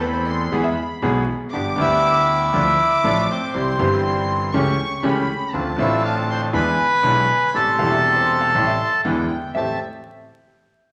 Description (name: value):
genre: tango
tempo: 120 BPM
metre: 4/4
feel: rubato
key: A minor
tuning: A4 = 440 Hz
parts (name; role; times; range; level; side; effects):
- vintage hollow-body jazz guitar; second line; 0.0-1.6, 7.8-9.8 s; B4 to F5; -32 LUFS; equal; none
- warm chamber violin section; second line; 0.0-9.8 s; E5 to D6; -30 LUFS; equal; none
- clear concert grand piano; accompaniment; 0.0-9.8 s; E1 to A4; -25 LUFS; equal; none
- bandoneon; stabs; 0.0-9.8 s; G3 to A4; -32 LUFS; equal; none
- upright bass; bass; 0.0-9.8 s; E1 to E2; -30 LUFS; equal; none
- bandoneon; melody; 1.8-9.8 s; C4 to C6; -21 LUFS; equal; none
room: wet large studio reverb, RT60 1.3 s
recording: vinyl crackle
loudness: -19 LUFS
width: mono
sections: 0.0-9.5 A section; 9.5-10.9 B section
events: none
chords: 0.0 Am/E; 0.5 E; 1.5 G; 2.5 Dm; 3.5 C; 4.5 A7/C#; 5.5 Dm7; 6.5 E7; 7.5 Am7; 9.0 E7; 9.5 Am7